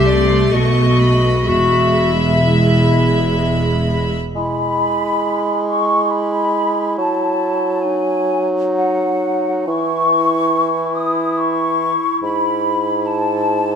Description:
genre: classical, slow romantic movement for symphony orchestra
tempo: 60-72 BPM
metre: 3/4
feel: rubato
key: E major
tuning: A4 = 438 Hz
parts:
  - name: warm symphonic violin section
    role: melody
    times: 0.0-4.1 s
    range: B5 to C#6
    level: -26 LUFS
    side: equal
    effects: none
  - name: warm clarinet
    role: second line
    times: 0.0-13.8 s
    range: D#4 to G4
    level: -21 LUFS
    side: left 2 dB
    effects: none
  - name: warm studio violin section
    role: second line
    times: 0.0-4.1 s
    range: D5 to E5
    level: -21 LUFS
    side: left 1 dB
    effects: none
  - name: dark symphonic viola section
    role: accompaniment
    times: 0.0-4.1 s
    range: G#3 to A3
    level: -21 LUFS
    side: right 2 dB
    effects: none
  - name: warm symphonic cello section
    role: bass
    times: 0.0-4.1 s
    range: E2 to C3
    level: -19 LUFS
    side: right 1 dB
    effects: none
  - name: warm symphonic double bass section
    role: bass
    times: 0.0-4.1 s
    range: E1 to C2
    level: -19 LUFS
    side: right 2 dB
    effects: none
  - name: large flute ensemble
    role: second line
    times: 4.3-13.8 s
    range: F#5 to D#6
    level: -18 LUFS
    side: left 2 dB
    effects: none
  - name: warm bassoon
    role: accompaniment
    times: 4.4-13.8 s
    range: G#2 to G#3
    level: -20 LUFS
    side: right 2 dB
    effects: none
room: moderate recital hall reverb, RT60 1.4 s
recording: close, detailed microphones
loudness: -14 LUFS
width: side -7 dB against mid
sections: 0.0-4.4 A section; 4.4-13.8 B section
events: none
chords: 0.0 C5; 0.5 B7; 1.5 E; 4.4 E/G#; 7.0 F#m69; 9.7 N.C.; 12.2 E/G#

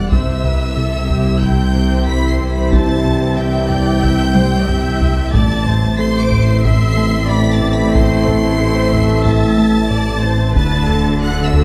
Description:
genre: cinematic, hybrid orchestral and electronic film score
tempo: 92 BPM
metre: 4/4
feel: straight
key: unclear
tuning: A4 = 437 Hz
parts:
  - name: rich studio violin section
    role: melody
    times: 0.0-11.6 s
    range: E6 to D7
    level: -28 LUFS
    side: equal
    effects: none
  - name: rich symphonic violin section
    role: second line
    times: 0.0-11.6 s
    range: E5 to D6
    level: -29 LUFS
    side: equal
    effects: none
  - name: clear symphonic viola section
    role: accompaniment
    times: 0.0-11.6 s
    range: E4 to E5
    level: -28 LUFS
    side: equal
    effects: none
  - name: dark trombone section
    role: sustained chords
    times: 0.0-11.6 s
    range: D3 to A3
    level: -27 LUFS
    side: equal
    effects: none
  - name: glassy FM pad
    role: sustained chords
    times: 0.0-11.6 s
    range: G3 to E5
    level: -29 LUFS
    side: equal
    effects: none
  - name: mellow French horn section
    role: sustained chords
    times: 0.0-11.6 s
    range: C4 to F#4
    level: -26 LUFS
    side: equal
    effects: none
  - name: clear symphonic double bass section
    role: bass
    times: 0.0-11.6 s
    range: A1 to D2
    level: -23 LUFS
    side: equal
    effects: none
  - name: dark tuba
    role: bass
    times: 0.0-11.6 s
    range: A1 to D2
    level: -24 LUFS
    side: equal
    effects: none
  - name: rich symphonic cello section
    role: bass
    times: 0.0-11.6 s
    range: A2 to D3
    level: -24 LUFS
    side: equal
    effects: none
  - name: warm sub bass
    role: bass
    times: 0.0-11.6 s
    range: D1 to C2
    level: -25 LUFS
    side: equal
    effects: none
  - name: plucky analog bass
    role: riff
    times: 0.1-11.6 s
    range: C2 to A3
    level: -23 LUFS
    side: equal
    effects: none
  - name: taiko ensemble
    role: drums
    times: 0.1-11.6 s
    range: none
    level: -22 LUFS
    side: equal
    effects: none
  - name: riser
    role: sound effects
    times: 10.6-11.6 s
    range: none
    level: barely audible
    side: none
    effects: none
room: wet scoring stage reverb, RT60 1.5 s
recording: none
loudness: -15 LUFS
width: mono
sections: 0.0-11.6 A section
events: drum fill 4.4-5.3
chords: 0.1 C; 5.3 Am; 10.6 D

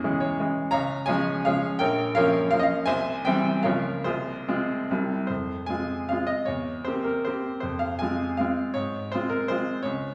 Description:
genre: classical, romantic triple-time dance for piano with dotted rhythms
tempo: 139-181 BPM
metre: 3/4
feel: rubato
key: F minor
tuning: A4 = 436 Hz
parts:
  - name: bright baby grand piano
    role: solo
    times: 0.0-10.1 s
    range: Bb1 to Bb5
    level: -26 LUFS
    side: equal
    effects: none
room: wet recital hall reverb, RT60 1.4 s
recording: heard from further back in the room, small room reverb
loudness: -26 LUFS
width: mono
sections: 0.0-5.3 A section; 5.3-10.1 B section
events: none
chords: 0.0 C#m/E; 0.7 Db; 1.8 Gm7b5/Bb; 2.9 C; 3.7 Bbm/Db; 4.1 Fm/C; 4.9 C; 5.3 Fm; 6.5 C7/E; 7.6 Fm; 8.7 Fm/Ab

